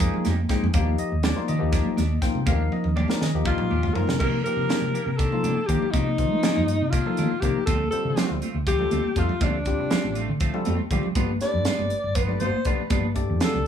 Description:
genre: electric jazz fusion.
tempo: 242 BPM (eighths).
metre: 7/8.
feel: straight.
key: C dorian from 4.2 s.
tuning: A4 = 440 Hz.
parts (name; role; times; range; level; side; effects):
barky tine electric piano; accompaniment; 0.0-13.7 s; F3 to G5; -29 LUFS; left 8 dB; wide subtle chorus.
clean electric guitar; stabs; 0.0-13.6 s; Eb3 to G4; -32 LUFS; right 7 dB; analog chorus.
hollow-body short-scale fingered electric bass; bass; 0.0-13.7 s; G1 to A3; -26 LUFS; equal; none.
crisp fusion drum kit; drums; 0.0-13.5 s; crash cymbal, hi-hat, kick drum, snare drum, toms; -27 LUFS; equal; none.
congas; percussion; 0.1-13.6 s; none; -31 LUFS; right 5 dB; none.
mellow alto saxophone; melody; 3.5-13.7 s; D4 to D5; -27 LUFS; left 1 dB; analog delay.
room: light reverb, studio ambience.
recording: small room ambience.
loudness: -21 LUFS.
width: side -8 dB against mid.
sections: 0.0-4.2 A section; 4.2-13.7 B section.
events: drum fill 2.7-4.2, 10.8-11.2.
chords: 0.0 Fm11; 0.8 Ebmaj7; 4.2 Cm9; 7.7 Dm7; 11.2 G7.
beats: 0.01 0.26 0.51 | 0.75 1.00 1.25 1.49 1.74 1.99 2.23 | 2.48 2.73 2.97 3.22 3.47 3.71 3.96 | 4.21 4.46 4.70 4.95 5.20 5.44 5.69 | 5.94 6.19 6.43 6.68 6.93 7.18 7.43 | 7.68 7.92 8.17 8.42 8.67 8.92 9.17 | 9.41 9.66 9.91 10.16 10.41 10.66 10.91 | 11.16 11.41 11.66 11.91 12.16 12.41 12.66 | 12.91 13.16 13.40 13.65.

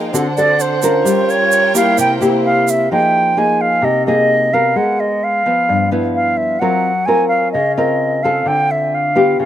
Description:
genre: bossa nova.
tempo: 130 BPM.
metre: 4/4.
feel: straight.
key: unclear.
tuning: A4 = 440 Hz.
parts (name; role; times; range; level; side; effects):
nylon-string guitar; accompaniment; 0.0-9.5 s; G2 to Bb4; -16 LUFS; left 1 dB; slapback echo.
warm studio violin section; sustained chords; 0.0-2.9 s; D4 to G5; -23 LUFS; right 1 dB; none.
egg shaker; percussion; 0.1-2.9 s; none; -24 LUFS; right 14 dB; none.
concert flute; melody; 0.4-9.5 s; C5 to Ab5; -14 LUFS; right 1 dB; slapback echo.
room: little or no reverb.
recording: recorded outdoors, with no room sound.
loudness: -12 LUFS.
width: side -11 dB against mid.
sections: 0.0-2.9 A section; 2.9-9.5 B section.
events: flute solo 0.0-2.9.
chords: 0.1 D7; 1.1 Gm7b5; 2.0 C7; 2.9 Fm11; 4.8 Abm9; 5.7 G6; 6.6 Gbmaj7#11; 8.5 Dm7.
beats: 0.13 0.59 | 1.06 1.52 1.98 2.45 | 2.91 3.37 3.84 4.30 | 4.76 5.23 5.69 6.16 | 6.62 7.08 7.54 8.01 | 8.47 8.93 9.40.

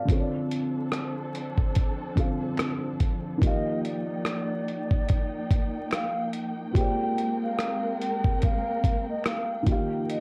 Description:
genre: lo-fi hip hop.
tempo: 72 BPM.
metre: 4/4.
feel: swing 60% on 16ths.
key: unclear.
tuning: A4 = 437 Hz.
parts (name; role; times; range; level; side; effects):
felt-muted upright piano; accompaniment; 0.0-10.2 s; D3 to F5; -34 LUFS; equal; cassette tape, low-pass filter.
warm studio string section; sustained chords; 0.1-10.2 s; F3 to G5; -36 LUFS; equal; low-pass filter.
dusty soul sampler-style drum kit; drums; 0.1-10.2 s; hi-hat, kick drum, rim click; -28 LUFS; equal; none.
finger snaps; percussion; 0.9-9.5 s; none; -46 LUFS; equal; none.
mellow hollow concert flute; melody; 3.4-10.2 s; D5 to G5; -34 LUFS; equal; low-pass filter.
room: moderate small room reverb, RT60 0.5 s.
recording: worn, warbling old tape, cassette tape, vinyl crackle, warbly pitch drift.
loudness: -28 LUFS.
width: mono.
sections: 0.1-10.2 A section.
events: none.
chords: 0.1 Dm7; 3.4 Ebmaj9; 6.8 Bb13; 9.7 Ebadd9.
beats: | 0.08 0.92 1.75 2.58 | 3.42 4.25 5.08 5.92 | 6.75 7.58 8.42 9.25 | 10.08.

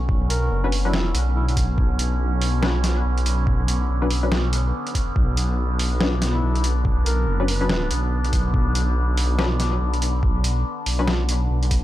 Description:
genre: deep dubstep.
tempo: 142 BPM.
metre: 4/4.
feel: swing 60% on 16ths, half-time.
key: B minor.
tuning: A4 = 437 Hz.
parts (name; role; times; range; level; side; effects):
overtone-sweeping drone; sustained chords; 0.0-11.8 s; D3 to D4; -28 LUFS; equal; chorus, built-in reverb.
dark detuned saw bass; bass; 0.0-11.8 s; F#1 to B1; -21 LUFS; equal; tube saturation.
electronic kick drum; drums; 0.1-11.8 s; none; -22 LUFS; equal; none.
warm duduk; melody; 0.3-1.5, 6.3-7.9 s; E4 to B4; -32 LUFS; equal; dub echo.
trip hop sampler-style drum kit; drums; 0.3-11.8 s; hi-hat, snare drum; -26 LUFS; right 1 dB; none.
filtered dub chord stab; stabs; 0.6-11.1 s; F#3 to B4; -30 LUFS; left 3 dB; lush chorus, cassette tape, dub echo.
room: digital ambience.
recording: dry, gritty hardware recording.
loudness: -19 LUFS.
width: side -14 dB against mid.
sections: 0.0-11.8 A section.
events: none.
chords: 0.0 Bmadd9.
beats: | 0.09 0.51 0.94 1.36 | 1.78 2.20 2.62 3.05 | 3.47 3.89 4.32 4.74 | 5.16 5.58 6.00 6.43 | 6.85 7.27 7.70 8.12 | 8.54 8.96 9.39 9.81 | 10.23 10.65 11.08 11.50.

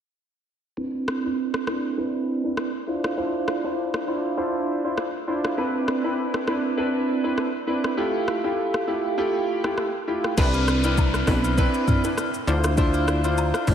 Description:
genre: afrobeats.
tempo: 100 BPM.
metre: 4/4.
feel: swing 55% on 16ths.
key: C major.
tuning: A4 = 440 Hz.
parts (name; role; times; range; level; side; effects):
clear grand piano; accompaniment; 0.8-13.7 s; A3 to C5; -23 LUFS; right 1 dB; analog chorus, low-pass filter.
deep house drum kit; drums; 1.1-13.7 s; crash cymbal, hi-hat, kick drum, rim click, shaker, toms; -27 LUFS; left 1 dB; none.
plucky analog bass; bass; 10.4-13.7 s; A1 to D2; -23 LUFS; left 1 dB; none.
downlifter; sound effects; 10.4-13.7 s; none; -35 LUFS; left 2 dB; none.
agogo bells and woodblock; percussion; 10.5-13.7 s; none; -33 LUFS; left 6 dB; none.
room: wet lush hall reverb, RT60 1.8 s.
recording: dreamy mix soaked in reverb.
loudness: -21 LUFS.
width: side -8 dB against mid.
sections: 0.8-10.4 A section; 10.4-13.7 B section.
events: filter sweep on grand piano 0.8-10.4.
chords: 0.8 Cmaj9; 2.9 Dm9; 5.6 Cmaj9; 8.0 Fmaj9; 10.4 Cmaj9; 12.5 Dm9.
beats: | 0.78 1.38 1.98 2.58 | 3.18 3.78 4.38 4.98 | 5.58 6.18 6.78 7.38 | 7.98 8.58 9.18 9.78 | 10.38 10.98 11.58 12.18 | 12.78 13.38.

